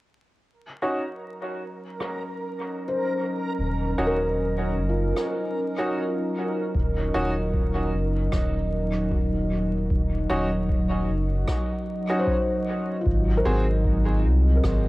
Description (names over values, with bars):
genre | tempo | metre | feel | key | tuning
ambient dub | 76 BPM | 4/4 | swing 56% on 16ths | Eb dorian | A4 = 440 Hz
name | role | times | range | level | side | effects
warbly tape-like pad | sustained chords | 1.7-14.9 s | Gb3 to Eb5 | -28 LUFS | right 1 dB | chorus, built-in reverb, cassette tape
backwards swelling texture | texture | 1.0-14.9 s | Gb3 to Bb4 | -37 LUFS | right 1 dB | built-in reverb, cassette tape
clear upright piano | stabs | 0.8-13.6 s | C4 to Ab4 | -30 LUFS | equal | low-pass filter, cassette tape, dub echo
rim click | drums | 2.0-14.8 s | none | -39 LUFS | equal | low-pass filter on snare, cassette tape, low-pass filter on room, dub echo
felt-muted upright piano | arpeggios | 2.9-14.9 s | F4 to C5 | -30 LUFS | left 2 dB | low-pass filter, cassette tape, tape echo
soft dub sub bass | bass | 3.6-14.9 s | Eb1 to C2 | -24 LUFS | equal | tube saturation
electronic kick drum | drums | 6.7-14.8 s | none | -28 LUFS | equal | cassette tape
room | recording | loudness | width
light reverb, small room ambience | home recording on cassette, vinyl crackle | -22 LUFS | side -19 dB against mid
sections
0.4-6.7 A section; 6.7-14.9 B section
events
fade-in on ambient pad 0.4-6.7; filter sweep on felt piano 0.4-6.7, 6.7-14.9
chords
0.4 Ebm7; 13.1 Ab7